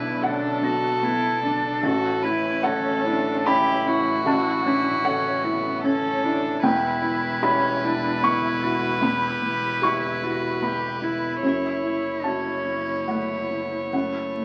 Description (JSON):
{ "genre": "neoclassical piano and strings", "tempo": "75 BPM", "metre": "3/4", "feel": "rubato", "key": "unclear", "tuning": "A4 = 440 Hz", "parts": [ { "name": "rich violin", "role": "melody", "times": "0.0-14.4 s", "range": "F#4 to C#5", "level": "-28 LUFS", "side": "equal", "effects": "none" }, { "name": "warm cello", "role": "second line", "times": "0.0-14.4 s", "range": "A3 to G4", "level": "-31 LUFS", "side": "equal", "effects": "none" }, { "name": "dark baby grand piano", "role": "accompaniment", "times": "0.0-14.4 s", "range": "A1 to C#6", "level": "-27 LUFS", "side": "equal", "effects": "none" }, { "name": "dark viola", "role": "accompaniment", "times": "0.0-14.4 s", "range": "B3 to E4", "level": "-35 LUFS", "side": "equal", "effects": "none" }, { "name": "dark double bass", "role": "bass", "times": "0.0-14.4 s", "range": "E1 to B1", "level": "-38 LUFS", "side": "equal", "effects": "none" } ], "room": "wet studio reverb, RT60 0.6 s", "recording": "very old 78 rpm record, vinyl crackle", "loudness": "-23 LUFS", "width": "mono", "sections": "0.0-14.4 A section", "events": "none", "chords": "0.0 Bm7; 1.8 A6; 6.6 Em; 11.4 F#m7" }